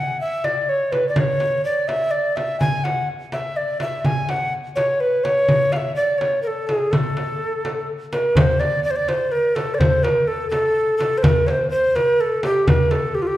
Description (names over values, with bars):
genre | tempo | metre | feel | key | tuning
Persian modal ensemble | 83 BPM (dotted quarters) | 6/8 | straight | A dastgah mahur, A dastgah shur from 8.4 s | A4 = 440 Hz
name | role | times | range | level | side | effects
mellow tenor recorder | melody | 0.0-13.4 s | F4 to G#5 | -19 LUFS | equal | none
frame drum | percussion | 0.4-13.0 s | none | -22 LUFS | equal | none
tombak | percussion | 8.4-13.3 s | none | -25 LUFS | left 1 dB | none
room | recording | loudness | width
wet recital hall reverb, RT60 1.8 s | heard from further back in the room | -17 LUFS | side -14 dB against mid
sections
0.0-8.4 A section; 8.4-13.4 B section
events
none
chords
none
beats
0.44 | 1.16 1.88 | 2.60 3.32 | 4.04 4.76 | 5.48 6.20 | 6.92 7.64 | 8.36 9.08 | 9.80 10.52 | 11.24 11.95 | 12.67